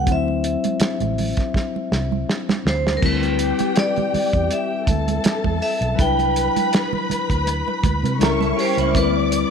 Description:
lush 1970s-style soul; 81 BPM; 4/4; swing 54% on 16ths; A4 = 440 Hz
vibraphone with hard mallets; melody; 0.0-9.5 s; Bb4 to G5; -24 LUFS; right 1 dB
mellow tine electric piano; accompaniment; 0.0-9.5 s; F#3 to C5; -24 LUFS; left 11 dB; fast stereo tremolo
vintage muted fingered electric bass; bass; 0.0-9.4 s; A1 to C3; -24 LUFS; right 1 dB
cloth-damped thuddy drum kit; drums; 0.1-9.5 s; crash cymbal, hi-hat, kick drum, snare drum; -22 LUFS; right 1 dB
congas; percussion; 0.1-9.1 s; -28 LUFS; right 12 dB
warm studio string section; second line; 3.0-9.5 s; C#4 to D6; -26 LUFS; left 2 dB
electric guitar through a small old amp; riff; 8.2-9.1 s; A#3 to A#4; -25 LUFS; right 11 dB; ensemble chorus
light reverb, small room reverb; 1960s-style stereo with parts hard left and right; -18 LUFS; side -6 dB against mid
0.0-3.0 A section; 3.0-9.5 B section
drum fill 1.6-3.0
0.1 D9; 3.0 D13sus4; 6.0 Cmaj9#11; 8.2 C#dim7; 8.9 D13sus4
| 0.07 0.81 1.55 2.29 | 3.03 3.77 4.51 5.25 | 5.99 6.73 7.47 8.21 | 8.95

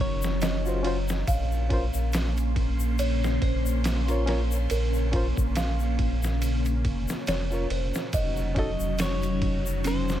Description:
trip hop; 70 BPM; 4/4; swing 56% on 16ths; Bb minor; A4 = 440 Hz
clean electric guitar; melody; 0.0-0.8, 8.6-10.2 s; C5 to Eb5; -35 LUFS; left 1 dB; dub echo
string machine, cellos; sustained chords; 0.0-10.2 s; Gb3 to C6; -31 LUFS; left 1 dB; phaser, ensemble chorus
music box; arpeggios; 0.0-10.2 s; Db4 to Gb5; -35 LUFS; right 3 dB; dub echo
round analog bass; bass; 0.0-10.2 s; F1 to Bb1; -27 LUFS; equal; tube saturation
trip hop sampler-style drum kit; drums; 0.2-10.2 s; kick drum, ride cymbal, snare drum; -30 LUFS; equal; vintage 12-bit sampler grit
egg shaker; percussion; 0.2-10.2 s; -42 LUFS; left 8 dB
reed electric piano; accompaniment; 0.6-8.7 s; Db4 to Db5; -33 LUFS; left 1 dB; overdrive, tremolo, tape echo
little or no reverb; -24 LUFS; side -12 dB against mid
0.0-10.2 A section
0.0 Ebm7; 1.3 Bbmadd9; 8.1 F7(#5, no3)
0.42 | 1.27 2.13 2.99 3.85 | 4.70 5.56 6.42 7.28 | 8.13 8.99 9.85

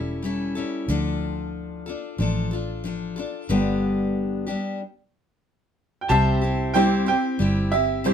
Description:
honky-tonk and classic country; 92 BPM; 4/4; straight; C major; A4 = 440 Hz
picked steel-string acoustic guitar; accompaniment; 0.0-8.1 s; G2 to A4; -24 LUFS; left 2 dB
vintage muted fingered electric bass; bass; 0.0-8.1 s; E1 to D2; -27 LUFS; right 1 dB
bright upright piano; melody; 6.0-8.1 s; E5 to A5; -24 LUFS; right 2 dB
pedal steel guitar; sustained chords; 6.1-8.1 s; G4 to E5; -31 LUFS; right 2 dB
honky-tonk upright piano; accompaniment; 6.7-8.1 s; E4 to C5; -26 LUFS; right 6 dB
moderate studio ambience, RT60 0.5 s; minimal, uncompressed stereo recording; -21 LUFS; side -8 dB against mid
0.0-6.1 A section; 6.1-8.1 B section
stop 4.8-6.1
0.0 A7; 0.9 Dm; 3.5 G; 6.1 C
0.23 | 0.88 1.53 2.19 2.84 | 3.49 4.14 4.80 5.45 | 6.10 6.75 7.40 8.05

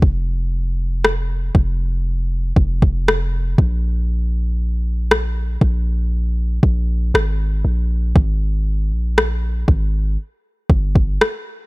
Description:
contemporary R&B; 59 BPM; 4/4; straight; A4 = 438 Hz
long sustained 808-style bass; bass; 0.0-11.2 s; F1 to Bb1; -19 LUFS; equal
smooth R&B drum kit; drums; 0.0-11.4 s; kick drum, rim click; -15 LUFS; equal; overdrive
little or no reverb; -16 LUFS; side -23 dB against mid
0.0-11.7 A section
| 0.02 1.04 2.06 3.07 | 4.09 5.11 6.12 7.14 | 8.16 9.18 10.19 11.21

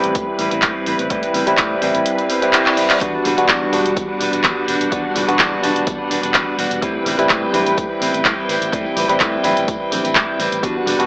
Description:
filtered disco house; 126 BPM; 4/4; straight; A4 = 439 Hz
overdriven tine electric piano; accompaniment; 0.0-11.1 s; G3 to B4; -19 LUFS; equal; phaser, sidechain pumping, low-pass filter
string machine, full ensemble; sustained chords; 0.0-11.1 s; G3 to G5; -27 LUFS; equal; ensemble chorus, sidechain pumping, low-pass filter
electric guitar with an envelope filter; riff; 0.0-11.1 s; G3 to B4; -22 LUFS; equal; sidechain pumping, low-pass filter
fingered electric bass; bass; 0.0-11.1 s; E1 to A2; -30 LUFS; equal; tube saturation, sidechain pumping, low-pass filter
punchy analog drum machine; drums; 0.0-11.1 s; handclaps, hi-hat; -19 LUFS; equal; sidechain pumping on hats
electronic kick drum; drums; 0.2-10.7 s; -26 LUFS; equal
reverse cymbal; sound effects; 2.5-3.0 s; -28 LUFS; left 2 dB
tambourine and congas; percussion; 3.0-11.1 s; -30 LUFS; equal
light reverb, digital ambience; AM radio sound; -15 LUFS; side -23 dB against mid
0.0-11.1 A section
drum fill 2.7-3.0
0.0 Am9; 3.0 Em9; 6.8 Am9
0.16 0.63 | 1.11 1.58 2.06 2.54 | 3.01 3.49 3.97 4.44 | 4.92 5.39 5.87 6.35 | 6.82 7.30 7.78 8.25 | 8.73 9.20 9.68 10.16 | 10.63

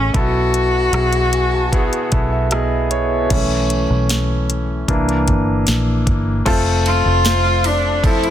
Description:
pop ballad; 76 BPM; 4/4; straight; A4 = 440 Hz
warm cello; melody; 0.0-8.3 s; C#4 to F#4; -18 LUFS; left 1 dB
clear concert grand piano; accompaniment; 0.0-8.3 s; B2 to A5; -19 LUFS; equal
vintage muted fingered electric bass; bass; 0.0-8.3 s; F1 to C2; -19 LUFS; equal
smooth R&B drum kit; drums; 0.1-8.3 s; crash cymbal, hi-hat, kick drum, ride cymbal, rim click, snare drum; -20 LUFS; equal; soft clipping on snare
little or no reverb; dense, heavily limited modern master; -14 LUFS; side -10 dB against mid
0.0-3.3 A section; 3.3-6.5 B section; 6.5-8.3 C section
grand piano fill 0.9-3.3; grand piano solo 3.3-6.5
0.1 B7sus4; 4.9 C7; 6.5 F
| 0.14 0.93 1.72 2.51 | 3.30 4.09 4.88 5.67 | 6.46 7.25 8.04

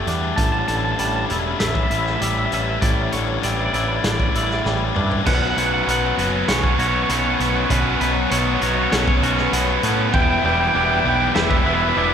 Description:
post-rock; 98 BPM; 4/4; straight; A4 = 440 Hz
twangy electric guitar; arpeggios; 0.0-12.1 s; A2 to B4; -27 LUFS; equal; warbly pitch drift
biting overdriven guitar; riff; 0.0-12.1 s; A2 to G4; -23 LUFS; left 6 dB; spring reverb
growling picked electric bass; bass; 0.1-12.1 s; E1 to A2; -24 LUFS; right 1 dB; overdrive
loose indie drum kit; drums; 0.1-11.7 s; crash cymbal, hi-hat, kick drum, snare drum, toms; -24 LUFS; equal
twangy electric guitar; melody; 0.4-12.1 s; B4 to A5; -24 LUFS; right 2 dB
tight distorted guitar; riff; 5.3-12.1 s; B2 to E4; -23 LUFS; right 8 dB; distortion
wet concert hall reverb, RT60 2.0 s; recorded in a church or concert hall; -17 LUFS; side -8 dB against mid
0.0-12.1 A section
build-up 0.0-12.1; drum fill 4.7-5.3
0.4 A7sus4; 5.3 Bsus2; 10.1 Em7
| 0.38 0.99 1.60 2.21 | 2.82 3.43 4.04 4.66 | 5.27 5.88 6.49 7.10 | 7.71 8.31 8.92 9.53 | 10.14 10.75 11.36 11.97

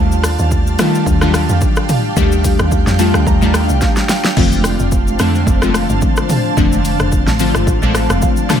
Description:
amapiano; 109 BPM; 4/4; swing 55% on 16ths; F mixolydian; A4 = 440 Hz
glassy digital keys; accompaniment; 0.0-8.6 s; D3 to Bb5; -17 LUFS; left 2 dB; chorus
ethereal airy pad; sustained chords; 0.0-8.6 s; D4 to A5; -21 LUFS; right 2 dB; ensemble chorus, built-in reverb, sidechain pumping
deep log drum bass; bass; 0.0-8.2 s; F1 to Eb3; -16 LUFS; equal
deep house drum kit; drums; 0.1-8.6 s; crash cymbal, hi-hat, kick drum, rim click, shaker, snare drum, toms; -16 LUFS; equal
congas; percussion; 4.4-8.6 s; -27 LUFS; right 3 dB
digital ambience; -11 LUFS; side -9 dB against mid
0.0-8.6 A section
synth keys fill 2.7-4.4, 7.9-8.6; drum fill 3.8-4.4
0.0 Ebmaj9#11; 4.4 F6
0.52 1.07 1.62 | 2.17 2.72 3.27 3.82 | 4.37 4.92 5.47 6.02 | 6.57 7.12 7.67 8.22

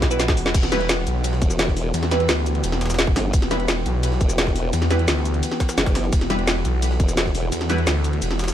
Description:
dark technical drum and bass; 172 BPM; 4/4; straight; E minor; A4 = 440 Hz
metallic inharmonic drone; sustained chords; 0.0-8.5 s; E3 to B4; -28 LUFS; equal; chorus, built-in reverb, vintage 12-bit sampler grit, sidechain pumping
snarling distorted saw bass; bass; 0.0-8.5 s; E1 to E2; -22 LUFS; equal; distortion, overdrive, sidechain pumping
drum and bass drum kit; drums; 0.0-8.5 s; cabasa, crash cymbal, hi-hat, ride cymbal, snare drum; -24 LUFS; equal
electronic kick drum; drums; 0.0-7.3 s; -20 LUFS; equal
jungle sampler-style drum kit; drums; 0.0-8.5 s; hi-hat, snare drum; -34 LUFS; equal
filtered dub chord stab; stabs; 0.1-7.8 s; G3 to B4; -27 LUFS; right 1 dB; phaser, lush chorus, digital delay
formant-sweep wobble bass; bass; 1.4-7.5 s; E1 to G1; -24 LUFS; equal; chorus
light reverb; dark, warm production; -18 LUFS; side -11 dB against mid
0.0-8.5 A section
drum fill 0.0-0.5
0.0 Em
0.20 | 0.55 0.89 1.24 1.59 | 1.94 2.29 2.64 2.99 | 3.34 3.68 4.03 4.38 | 4.73 5.08 5.43 5.78 | 6.13 6.47 6.82 7.17 | 7.52 7.87 8.22

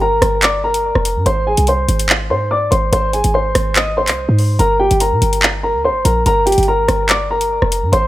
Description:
hip hop, drill; 144 BPM; 4/4; half-time; G phrygian; A4 = 440 Hz
dark grand piano; melody; 0.0-8.1 s; G4 to Eb6; -15 LUFS; equal; low-pass filter, digital delay
short 808-style bass; bass; 0.0-8.1 s; F1 to Bb2; -17 LUFS; equal
drill drum kit; drums; 0.2-8.0 s; handclaps, hi-hat, rim click; -17 LUFS; equal
little or no reverb; -12 LUFS; side -15 dB against mid
0.0-8.1 A section
0.0 Gm7; 1.3 Ab; 4.6 Gm
0.01 0.43 0.84 | 1.26 1.68 2.09 2.51 | 2.93 3.34 3.76 4.18 | 4.59 5.01 5.43 5.84 | 6.26 6.68 7.09 7.51 | 7.93

